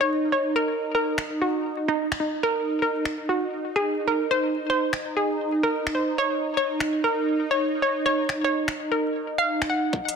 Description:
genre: UK garage, two-step garage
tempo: 128 BPM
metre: 4/4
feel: swing 66% on 16ths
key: Eb dorian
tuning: A4 = 435 Hz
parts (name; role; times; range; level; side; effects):
- hollow square pluck; melody; 0.0-9.9 s; Eb4 to Gb5; -24 LUFS; equal; chorus, ping-pong delay
- warm analog pad; sustained chords; 0.0-10.2 s; Eb4; -27 LUFS; right 2 dB; chorus, sidechain pumping
- garage drum kit; drums; 1.2-10.2 s; finger snaps, hi-hat; -30 LUFS; left 1 dB; soft clipping on snare
- electronic kick drum; drums; 9.9-10.1 s; none; -27 LUFS; equal; high-pass filter on kick
- riser; sound effects; 10.1-10.2 s; none; -52 LUFS; right 3 dB; none
room: moderate plate reverb, RT60 1.4 s, digital ambience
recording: dense, heavily limited modern master, vinyl crackle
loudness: -22 LUFS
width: side -6 dB against mid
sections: 0.0-9.9 A section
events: none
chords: none

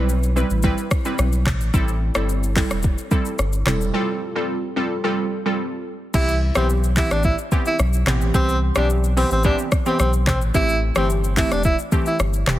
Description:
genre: afrobeats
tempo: 109 BPM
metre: 4/4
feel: straight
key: C major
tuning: A4 = 440 Hz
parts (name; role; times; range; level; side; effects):
- glassy wavetable pluck; accompaniment; 0.0-12.6 s; E3 to B4; -24 LUFS; right 1 dB; chorus
- warm sub bass; bass; 0.0-12.6 s; E1 to C2; -21 LUFS; equal; none
- afro-pop drum kit; drums; 0.1-12.6 s; crash cymbal, handclaps, hi-hat, kick drum, rim click, shaker, toms; -22 LUFS; equal; none
- bright tenor saxophone; melody; 6.1-12.2 s; C4 to E4; -23 LUFS; equal; tape echo
room: light reverb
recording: heavily compressed radio sound, multiband compression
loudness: -18 LUFS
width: side -14 dB against mid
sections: 0.0-6.1 A section; 6.1-12.6 B section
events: break 3.9-6.1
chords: 0.0 Cmaj7; 1.7 Am7; 3.9 G9sus4; 6.1 Cmaj7; 10.5 Am7

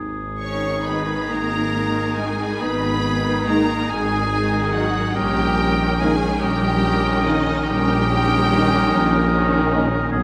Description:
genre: classical, slow romantic movement for symphony orchestra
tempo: 43-50 BPM (dotted quarters)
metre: 12/8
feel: rubato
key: unclear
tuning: A4 = 440 Hz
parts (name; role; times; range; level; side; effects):
- clear oboe; second line; 0.0-10.2 s; G#4 to A#4; -30 LUFS; equal; none
- concert flute; second line; 0.0-10.2 s; D#6; -29 LUFS; equal; none
- warm clarinet; second line; 0.0-10.2 s; B3 to D#4; -32 LUFS; equal; none
- dark tuba; bass; 0.0-10.2 s; G#1 to B1; -29 LUFS; equal; none
- rich studio double bass section; bass; 0.0-10.2 s; G#1 to B1; -29 LUFS; equal; none
- rich studio violin section; melody; 0.4-9.7 s; D#5 to C#6; -30 LUFS; equal; none
- clear studio violin section; second line; 0.4-9.7 s; D#4 to C#5; -31 LUFS; equal; none
- warm studio viola section; accompaniment; 0.4-10.1 s; D#3 to D#4; -28 LUFS; equal; none
- warm studio cello section; bass; 0.4-9.7 s; D#3 to C#4; -29 LUFS; equal; none
- mellow trombone section; sustained chords; 0.9-9.9 s; D#3 to A#3; -34 LUFS; equal; none
- warm French horn section; sustained chords; 0.9-9.9 s; G#3 to D#4; -31 LUFS; equal; none
room: moderate scoring stage reverb, RT60 2.1 s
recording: none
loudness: -20 LUFS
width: mono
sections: 0.0-10.2 A section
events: none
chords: 0.0 G#m; 5.2 D#7/A#

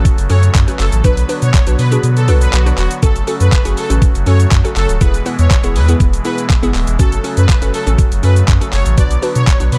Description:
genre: dance-pop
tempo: 121 BPM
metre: 4/4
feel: straight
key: F# minor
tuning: A4 = 440 Hz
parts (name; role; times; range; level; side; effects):
- glassy wavetable pluck; accompaniment; 0.0-9.8 s; B3 to B4; -24 LUFS; equal; chorus, sidechain pumping
- pipe organ, soft reed; sustained chords; 0.0-9.8 s; B2 to F#4; -27 LUFS; equal; sidechain pumping
- warm sub bass; bass; 0.0-9.8 s; D1 to B2; -15 LUFS; equal; sidechain pumping
- detuned 8-bit digital drum machine; drums; 0.1-9.8 s; handclaps, hi-hat, kick drum, shaker; -16 LUFS; equal; none
- soft supersaw; melody; 0.3-9.8 s; F#4 to D5; -26 LUFS; equal; sidechain pumping
room: digital ambience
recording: dark, warm production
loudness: -13 LUFS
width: mono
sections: 0.0-9.8 A section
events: kick muted 2.0-3.0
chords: 0.0 F#m; 1.0 Bm; 3.0 F#m; 5.0 E; 7.0 F#m; 9.0 Bm

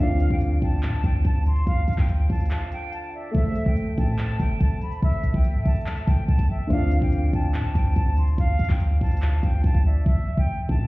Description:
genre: hip hop, trap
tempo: 143 BPM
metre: 4/4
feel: half-time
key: unclear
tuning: A4 = 440 Hz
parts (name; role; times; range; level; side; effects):
- concert flute; melody; 0.0-10.9 s; E5 to C6; -33 LUFS; right 1 dB; ping-pong delay
- mellow hollow silver concert flute; second line; 0.0-10.1 s; D5 to A5; -38 LUFS; left 1 dB; ping-pong delay
- dark grand piano; accompaniment; 0.0-10.1 s; D3 to E5; -31 LUFS; equal; none
- clean 808-style bass; bass; 0.0-10.9 s; G1 to A2; -23 LUFS; equal; none
- trap drum kit; drums; 0.2-10.8 s; handclaps, hi-hat, kick drum; -23 LUFS; equal; overdrive
room: little or no reverb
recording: heard muffled through a wall, stone room reverb, EQ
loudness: -20 LUFS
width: side -20 dB against mid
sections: 0.0-10.1 A section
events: break 2.5-3.3; hi-hats muted 10.1-10.9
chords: 0.0 Dm7; 3.3 Am; 6.7 Dm7; 10.1 A5

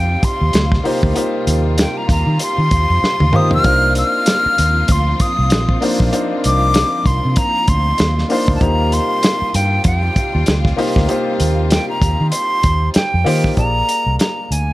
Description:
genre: lush 1970s-style soul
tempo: 97 BPM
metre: 4/4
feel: swing 58% on 16ths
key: unclear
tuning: A4 = 440 Hz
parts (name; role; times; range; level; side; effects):
- breathy silver concert flute; melody; 0.0-14.7 s; G5 to F6; -18 LUFS; equal; none
- clear grand piano; accompaniment; 0.0-14.7 s; Bb3 to D5; -22 LUFS; left 1 dB; none
- warm studio string section; sustained chords; 0.0-13.5 s; C3 to F4; -26 LUFS; equal; none
- vintage muted fingered electric bass; bass; 0.0-14.7 s; Bb1 to Eb3; -17 LUFS; equal; none
- warm soul drum kit; drums; 0.2-14.7 s; hi-hat, kick drum, snare drum, toms; -17 LUFS; equal; none
room: studio ambience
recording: none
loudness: -13 LUFS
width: side -17 dB against mid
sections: 0.0-13.6 A section; 13.6-14.7 B section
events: drum fill 3.0-3.6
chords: 0.0 Eb69; 3.6 Cm11; 8.6 Eb69; 13.6 Bb7

